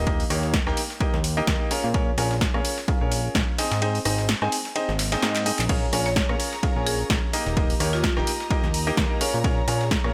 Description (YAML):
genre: piano house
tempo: 128 BPM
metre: 4/4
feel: swing 56% on 16ths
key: Bb dorian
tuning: A4 = 443 Hz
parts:
  - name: clear grand piano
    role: riff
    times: 0.0-10.1 s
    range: Bb3 to Ab5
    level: -30 LUFS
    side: equal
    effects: sidechain pumping
  - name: fat analog bass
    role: bass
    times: 0.0-10.1 s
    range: Eb1 to Bb2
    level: -29 LUFS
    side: equal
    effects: sidechain pumping
  - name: dusty soul sampler-style drum kit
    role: drums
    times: 0.1-10.0 s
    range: ride cymbal, snare drum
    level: -37 LUFS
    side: equal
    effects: sidechain pumping on cymbals, high-pass filter on cymbals, high-pass filter on snare
  - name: electronic kick drum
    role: drums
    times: 0.1-10.0 s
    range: none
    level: -27 LUFS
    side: equal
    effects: overdrive
  - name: punchy analog drum machine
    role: drums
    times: 0.2-10.1 s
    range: crash cymbal, handclaps, hi-hat, rim click, snare drum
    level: -30 LUFS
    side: equal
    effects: overdrive
  - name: swell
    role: sound effects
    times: 5.0-5.7 s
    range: none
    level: -42 LUFS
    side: equal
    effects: none
  - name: warm symphonic string section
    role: sustained chords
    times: 5.7-10.1 s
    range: G4 to Bb5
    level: -37 LUFS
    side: equal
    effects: sidechain pumping
  - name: marimba with hard mallets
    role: melody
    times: 6.1-8.1 s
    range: F4 to Db5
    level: -34 LUFS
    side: equal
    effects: digital delay
room: little or no reverb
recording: none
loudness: -24 LUFS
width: mono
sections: 0.0-10.1 A section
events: kick drops out 3.8-5.7; drum fill 5.3-5.7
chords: 0.0 Eb; 1.7 Bbm7; 3.6 Ab; 5.7 Bbm7; 7.3 Eb; 9.2 Bbm7